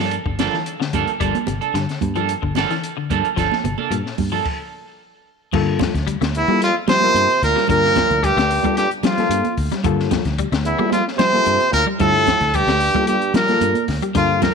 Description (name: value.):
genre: afrobeat.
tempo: 111 BPM.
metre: 4/4.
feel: straight.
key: G dorian.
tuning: A4 = 437 Hz.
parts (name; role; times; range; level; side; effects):
clean electric guitar; arpeggios; 0.0-14.5 s; Bb2 to A3; -26 LUFS; left 11 dB; ensemble chorus.
clean electric guitar; stabs; 0.0-4.5 s; F3 to A4; -23 LUFS; right 11 dB; lush chorus, tape echo.
fingered electric bass; bass; 0.0-14.5 s; G1 to G3; -23 LUFS; equal; none.
compact cocktail drum kit; drums; 0.0-14.5 s; crash cymbal, hi-hat, kick drum, snare drum; -25 LUFS; left 4 dB; none.
congas; percussion; 0.4-14.5 s; none; -26 LUFS; right 14 dB; none.
overdriven reed electric piano; accompaniment; 5.5-14.5 s; A3 to Bb4; -26 LUFS; left 13 dB; none.
clear trumpet; melody; 6.4-14.5 s; E4 to C5; -17 LUFS; equal; none.
clear bass trombone; second line; 6.4-14.5 s; E2 to C3; -25 LUFS; right 12 dB; none.
room: moderate echo chamber reverb, RT60 1.6 s, small room ambience.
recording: 1960s-style stereo with parts hard left and right.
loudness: -16 LUFS.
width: side -5 dB against mid.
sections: 0.0-5.5 A section; 5.5-14.5 B section.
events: stop 4.5-5.5.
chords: 0.0 Gm9.